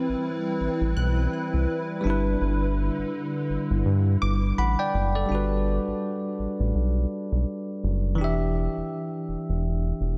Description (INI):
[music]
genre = R&B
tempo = 83 BPM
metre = 4/4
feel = swing 58% on 16ths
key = G major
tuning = A4 = 440 Hz
[part]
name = bell-like tine electric piano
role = accompaniment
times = 0.0-10.2 s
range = E3 to B5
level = -30 LUFS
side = equal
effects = none
[part]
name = hollow soft pad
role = sustained chords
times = 0.0-5.3 s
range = D3 to B4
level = -33 LUFS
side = equal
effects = ensemble chorus
[part]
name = round analog bass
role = bass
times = 0.1-10.2 s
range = E1 to G2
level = -27 LUFS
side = equal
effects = none
[part]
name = glassy wavetable pluck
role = texture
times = 1.0-5.3 s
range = D6 to F#6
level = -39 LUFS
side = equal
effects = chorus, delay
[sound]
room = moderate lush hall reverb, RT60 3.0 s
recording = dreamy mix soaked in reverb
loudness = -26 LUFS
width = mono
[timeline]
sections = 0.0-5.3 A section; 5.3-10.2 B section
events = none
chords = 0.0 Cmaj7; 2.0 G6; 5.3 Gmaj7; 8.2 Em7